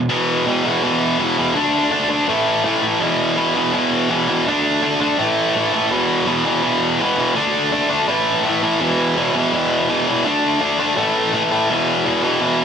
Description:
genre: punk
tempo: 165 BPM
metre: 4/4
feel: straight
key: unclear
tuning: A4 = 439 Hz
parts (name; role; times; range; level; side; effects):
- tight distorted guitar; solo; 0.0-12.6 s; E2 to D4; -15 LUFS; equal; distortion, digital delay
room: light reverb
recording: heavily compressed radio sound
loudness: -15 LUFS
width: side -7 dB against mid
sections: 0.1-11.7 A section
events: none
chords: 0.1 E5; 1.6 D5; 2.3 A5; 3.0 E5; 4.5 D5; 5.2 A5; 5.9 E5; 7.4 D5; 8.1 A5; 8.8 E5; 10.3 D5; 11.0 A5; 11.7 E5

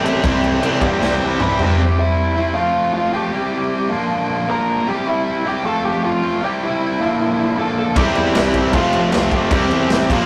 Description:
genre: punk rock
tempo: 155 BPM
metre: 4/4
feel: straight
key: unclear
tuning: A4 = 439 Hz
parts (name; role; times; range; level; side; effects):
- distorted electric guitar; riff; 0.0-10.3 s; Bb2 to F4; -23 LUFS; equal; overdrive
- tight distorted guitar; riff; 0.0-1.8, 8.0-10.3 s; F2 to C4; -21 LUFS; equal; distortion
- picked electric bass; bass; 0.0-1.8, 8.0-10.3 s; F1 to G2; -26 LUFS; equal; none
- raw garage drum kit; drums; 0.1-1.7, 8.0-10.2 s; crash cymbal, kick drum, snare drum, toms; -22 LUFS; equal; none
- lead guitar through a small cranked amp; melody; 0.8-10.1 s; E4 to B5; -23 LUFS; equal; overdrive
- distorted electric guitar; riff; 8.0-10.3 s; Bb2 to F4; -25 LUFS; equal; overdrive
room: moderate small room reverb, RT60 0.5 s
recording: rough rehearsal-room recording, tube saturation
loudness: -18 LUFS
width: mono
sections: 0.0-1.8 A section; 1.8-10.3 B section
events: half time 0.0-1.8; lead electric guitar solo 0.0-1.8; drum fill 1.0-1.8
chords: 0.0 C; 2.6 F; 3.3 C; 3.9 Bb; 4.9 C; 5.7 F; 6.4 C; 7.0 Bb; 8.0 C; 8.7 F; 9.5 C

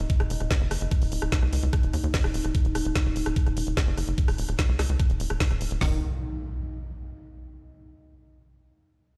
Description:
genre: psychedelic trance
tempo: 147 BPM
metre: 4/4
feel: straight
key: Eb minor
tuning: A4 = 440 Hz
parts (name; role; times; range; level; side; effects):
- overtone-sweeping drone; sustained chords; 0.0-5.9 s; Eb4; -39 LUFS; equal; chorus, built-in reverb, sidechain pumping
- tight sequencer bass; bass; 0.0-6.0 s; Eb1 to Eb2; -30 LUFS; equal; none
- drum and bass drum kit; drums; 0.0-5.8 s; hi-hat, rim click, snare drum; -35 LUFS; equal; overdrive
- drum and bass drum kit; drums; 0.1-5.9 s; hi-hat, kick drum, snare drum; -26 LUFS; equal; overdrive
- overdriven acid bass; riff; 5.8-6.0 s; Eb3; -40 LUFS; equal; cassette tape, sidechain pumping, dub echo
- impact; sound effects; 5.8-7.4 s; none; -36 LUFS; equal; none
room: digital ambience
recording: played on a big sound system in a bare room, large studio reverb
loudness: -26 LUFS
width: mono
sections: 0.0-5.8 A section; 5.8-7.4 B section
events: filter sweep on synth drone 0.0-5.8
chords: 0.0 Eb5; 5.8 N.C.

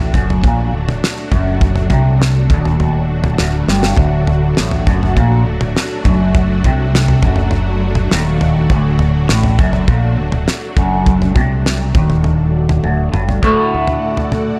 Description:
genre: psychedelic rock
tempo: 102 BPM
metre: 4/4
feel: straight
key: D phrygian dominant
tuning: A4 = 440 Hz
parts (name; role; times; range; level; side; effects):
- string machine, violas; sustained chords; 0.0-14.6 s; F#3 to F#5; -26 LUFS; equal; ensemble chorus
- semi-hollow electric guitar; riff; 0.0-14.6 s; D2 to F#4; -18 LUFS; equal; phaser, double-tracked
- fingered electric bass; bass; 0.0-14.0 s; D1 to D2; -21 LUFS; equal; none
- damped 70s drum kit; drums; 0.1-14.5 s; kick drum, snare drum, toms; -19 LUFS; equal; none
room: light reverb, small room reverb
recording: none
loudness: -14 LUFS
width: mono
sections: 0.0-13.4 A section; 13.4-14.6 B section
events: drum fill 3.7, 12.8-13.4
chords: 0.0 D

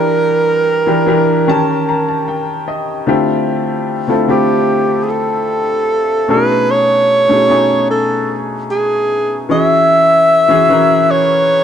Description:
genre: soul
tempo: 75 BPM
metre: 4/4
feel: straight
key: unclear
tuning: A4 = 441 Hz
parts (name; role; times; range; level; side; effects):
- breathy alto saxophone; melody; 0.0-11.6 s; G4 to E5; -12 LUFS; right 1 dB; none
- clear baby grand piano; accompaniment; 0.0-11.6 s; B2 to Bb5; -15 LUFS; left 2 dB; none
room: moderate echo chamber reverb, RT60 1.5 s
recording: dark, warm production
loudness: -11 LUFS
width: side -8 dB against mid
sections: 0.0-11.6 A section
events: grand piano fill 1.5-3.1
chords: 0.0 Em7b5; 1.5 Eb7#11; 3.1 Dm11; 6.3 B13; 9.5 E69

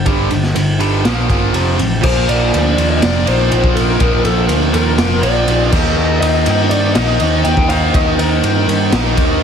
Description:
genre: hard rock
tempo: 122 BPM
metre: 4/4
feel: straight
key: unclear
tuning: A4 = 444 Hz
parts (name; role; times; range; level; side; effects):
- cranked stack guitar; riff; 0.0-9.4 s; F2 to Eb4; -19 LUFS; right 14 dB; overdrive
- tight distorted guitar; riff; 0.0-9.4 s; F2 to Eb4; -20 LUFS; left 14 dB; distortion
- picked electric bass; bass; 0.0-9.4 s; F1 to G2; -17 LUFS; equal; none
- raw garage drum kit; drums; 0.1-9.3 s; crash cymbal, kick drum, ride cymbal, snare drum; -17 LUFS; equal; none
- lead guitar through a small cranked amp; melody; 2.0-8.6 s; A4 to G5; -19 LUFS; left 3 dB; overdrive, slapback echo
room: small room ambience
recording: heavily compressed radio sound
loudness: -11 LUFS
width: side -7 dB against mid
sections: 0.0-2.0 A section; 2.0-9.4 B section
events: none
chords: 0.0 G5; 1.0 Bb5; 1.5 F5; 2.0 Bb; 5.7 Eb

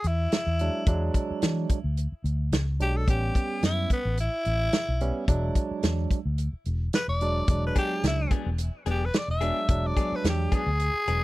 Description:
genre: straight-eighth soul blues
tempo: 109 BPM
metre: 4/4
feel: swing 53% on 16ths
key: E mixolydian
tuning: A4 = 440 Hz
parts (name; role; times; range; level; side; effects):
- growling tenor saxophone; melody; 0.0-11.2 s; B3 to E5; -30 LUFS; left 1 dB; none
- vintage muted fingered electric bass; bass; 0.0-11.2 s; E1 to E3; -27 LUFS; equal; none
- warm soul drum kit; drums; 0.0-11.2 s; hi-hat, kick drum, snare drum; -25 LUFS; equal; none
- barky tine electric piano; accompaniment; 0.6-10.6 s; F#3 to D4; -32 LUFS; moving between right 3 dB and right 9 dB; overdrive, auto-pan
- direct-recorded clean electric guitar; stabs; 7.8-11.2 s; F#3 to G#4; -35 LUFS; left 7 dB; spring reverb
room: little or no reverb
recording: none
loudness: -24 LUFS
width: side -18 dB against mid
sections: 0.0-11.2 A section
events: none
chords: 0.0 E9; 3.1 A9; 5.3 E9

